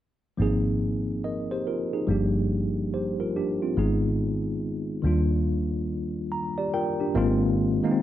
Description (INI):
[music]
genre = R&B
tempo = 71 BPM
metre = 4/4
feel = swing 62% on 16ths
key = unclear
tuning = A4 = 440 Hz
[part]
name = mellow tine electric piano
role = accompaniment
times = 0.4-8.0 s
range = Eb3 to Bb5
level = -25 LUFS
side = equal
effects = medium stereo tremolo
[part]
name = vintage muted fingered electric bass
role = bass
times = 0.4-7.8 s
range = G1 to Eb2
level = -28 LUFS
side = equal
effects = none
[sound]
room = moderate studio reverb, RT60 0.9 s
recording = none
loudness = -24 LUFS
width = side -12 dB against mid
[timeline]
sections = 0.4-7.1 A section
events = tine electric piano fill 5.9-7.1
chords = 0.4 Ab69; 2.1 Gm7; 3.8 Abm; 5.0 Ebmaj9; 7.1 Ab69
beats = | 0.39 1.23 2.08 2.92 | 3.77 4.61 5.46 6.30 | 7.15 7.99